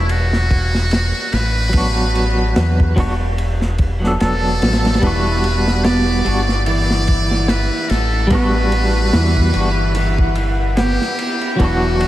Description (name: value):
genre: trip hop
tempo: 73 BPM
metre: 4/4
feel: swing 57% on 16ths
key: E minor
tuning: A4 = 440 Hz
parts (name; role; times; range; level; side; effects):
- trumpet with metal mute; melody; 0.0-12.1 s; E4 to D5; -22 LUFS; equal; dub echo
- deep dub fingered electric bass; bass; 0.0-12.1 s; E1 to E2; -18 LUFS; equal; none
- crunchy breakbeat drum kit; drums; 0.1-12.1 s; kick drum, ride cymbal, snare drum; -21 LUFS; equal; none
- clean electric guitar; accompaniment; 1.7-12.1 s; F#3 to A4; -21 LUFS; equal; tremolo, tape echo
- nylon-string guitar; arpeggios; 5.0-12.1 s; E3 to B3; -22 LUFS; right 2 dB; tape echo
- backwards swelling texture; texture; 6.1-12.1 s; E4 to F#5; -29 LUFS; left 2 dB; built-in reverb, wide subtle chorus
room: moderate lush hall reverb, RT60 2.7 s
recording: dreamy mix soaked in reverb, vinyl crackle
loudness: -14 LUFS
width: side -14 dB against mid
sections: 0.0-12.1 A section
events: none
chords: 0.0 Bm/E; 5.0 Em7